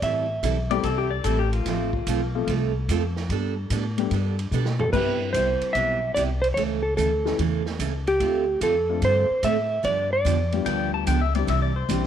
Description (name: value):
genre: country, western swing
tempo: 147 BPM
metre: 4/4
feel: swing 67% on 8ths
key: C major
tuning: A4 = 436 Hz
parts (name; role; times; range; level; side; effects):
- clean lap steel guitar; melody; 0.0-0.8, 4.8-10.9 s; G4 to E5; -23 LUFS; right 1 dB; none
- picked steel-string acoustic guitar; accompaniment; 0.0-12.0 s; C3 to A4; -29 LUFS; right 10 dB; none
- upright bass; bass; 0.0-12.1 s; A1 to B2; -26 LUFS; left 1 dB; none
- swinging big-band drum kit; drums; 0.0-12.1 s; crash cymbal, hi-hat, kick drum, ride cymbal, snare drum, toms; -35 LUFS; right 4 dB; none
- pedal steel guitar; second line; 0.7-2.7, 10.7-12.1 s; F4 to A5; -28 LUFS; left 11 dB; none
- dark upright piano; accompaniment; 0.7-12.1 s; E3 to A4; -29 LUFS; left 12 dB; none
room: light reverb, studio ambience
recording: 1960s-style stereo with parts hard left and right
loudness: -21 LUFS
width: side -9 dB against mid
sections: 0.0-4.9 A section; 4.9-12.1 B section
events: drum fill 4.5-4.9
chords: 0.0 Am7; 1.7 F/A; 3.3 Gadd9; 4.9 Cmaj7; 6.6 A/C#; 8.2 Dm7; 9.8 G7; 11.5 Cadd9